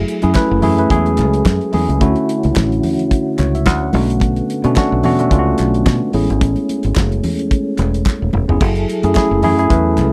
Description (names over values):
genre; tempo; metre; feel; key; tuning
disco; 109 BPM; 4/4; swing 56% on 16ths; F# minor; A4 = 439 Hz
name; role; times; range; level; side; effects
percussive tonewheel organ; sustained chords; 0.0-10.1 s; D3 to A4; -24 LUFS; equal; chorus vibrato, slow rotary speaker
fingered electric bass; bass; 0.0-10.1 s; D#1 to B2; -19 LUFS; equal; none
damped 70s drum kit; drums; 0.1-10.1 s; crash cymbal, hi-hat, kick drum, snare drum, toms; -20 LUFS; equal; none
tine electric piano; accompaniment; 0.2-10.1 s; G#3 to F#5; -20 LUFS; equal; none
congas; percussion; 0.3-10.1 s; none; -28 LUFS; equal; none
group handclap; percussion; 0.3-10.1 s; none; -32 LUFS; equal; none
room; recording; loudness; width
little or no reverb; dry, close 1970s-style studio recording; -15 LUFS; mono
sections
0.0-10.1 A section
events
tine electric piano fill 3.1-4.2; drum fill 8.1-8.6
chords
0.0 F#m9; 2.0 Dmaj9; 3.9 Bm7; 6.1 Amaj9; 8.6 F#m9